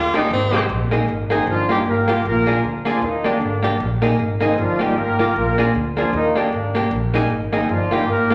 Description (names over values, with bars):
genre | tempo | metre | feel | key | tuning
ska | 154 BPM | 4/4 | swing 58% on 8ths | Bb mixolydian | A4 = 436 Hz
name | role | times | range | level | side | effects
bright tenor saxophone | melody | 0.0-0.7 s | C4 to F4 | -23 LUFS | equal | none
upright bass | bass | 0.0-8.3 s | G1 to Eb2 | -26 LUFS | equal | none
vintage hollow-body jazz guitar | accompaniment | 0.1-8.3 s | Ab3 to Ab4 | -22 LUFS | equal | tape echo
bright tonewheel organ | stabs | 0.1-0.6 s | Eb4 to D5 | -30 LUFS | equal | chorus vibrato, fast rotary speaker
mellow horn section | melody | 1.3-8.3 s | D3 to Bb4 | -23 LUFS | equal | none
room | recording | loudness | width
wet large studio reverb, RT60 1.3 s | none | -19 LUFS | mono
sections
0.7-8.3 A section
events
none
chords
0.3 Abmaj7; 0.7 Bb7sus4; 1.5 Gm7; 2.2 Bb7; 3.0 Ebmaj7; 3.8 Bb7sus4; 4.6 Gm7; 5.4 Bb7; 6.1 Ebmaj7; 6.9 Bb7sus4; 7.7 Gm7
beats
0.30 | 0.69 1.08 1.47 1.86 | 2.24 2.63 3.02 3.41 | 3.80 4.19 4.58 4.96 | 5.35 5.74 6.13 6.52 | 6.91 7.30 7.69 8.08